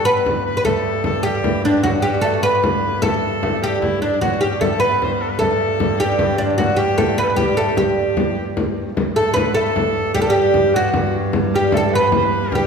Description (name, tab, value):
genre	medieval dance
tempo	101 BPM (dotted quarters)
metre	6/8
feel	straight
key	G major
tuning	A4 = 442 Hz
part	oud	melody	0.0-12.7 s	D4 to B4	-18 LUFS	equal	slapback echo
part	bright shawm	second line	0.0-12.7 s	D4 to C5	-26 LUFS	left 4 dB	none
part	rich viola da gamba	drone	0.0-12.7 s	G2	-25 LUFS	equal	none
part	lute	second line	0.1-12.7 s	D3 to B3	-25 LUFS	right 4 dB	none
part	frame drum	percussion	0.3-12.7 s	none	-23 LUFS	left 2 dB	none
room	wet recital hall reverb, RT60 1.5 s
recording	heard from further back in the room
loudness	-15 LUFS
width	side -6 dB against mid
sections	0.0-9.0 A section; 9.0-12.7 B section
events	none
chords	none